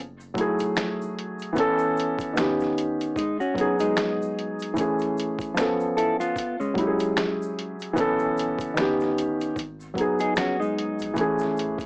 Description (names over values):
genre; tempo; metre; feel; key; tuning
lo-fi hip hop; 75 BPM; 4/4; swing 58% on 16ths; F# dorian; A4 = 440 Hz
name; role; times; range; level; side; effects
soft dub sub bass; bass; 0.0-0.3, 8.0-11.9 s; D#1 to B1; -44 LUFS; equal; none
egg shaker; percussion; 0.2-11.9 s; none; -54 LUFS; left 1 dB; none
felt-muted upright piano; accompaniment; 0.3-11.9 s; D#3 to A4; -24 LUFS; equal; cassette tape, low-pass filter
lo-fi sampler-style drum kit; drums; 0.4-11.9 s; finger snaps, hi-hat, kick drum, snare drum; -30 LUFS; equal; overdrive
mellow electric guitar; second line; 3.2-11.1 s; G#3 to A4; -26 LUFS; equal; low-pass filter, analog delay
room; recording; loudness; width
light reverb; dry, gritty hardware recording, cassette tape, small speaker sound; -22 LUFS; side -32 dB against mid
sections
0.0-11.9 A section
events
none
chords
0.0 F#m9; 1.6 B9sus4; 2.4 D#7b13; 3.2 G#m7; 4.8 Amaj7; 5.6 C#aug7; 6.4 F#sus2; 8.0 B9sus4; 8.8 D#7b13; 9.6 G#m7; 11.2 Amaj7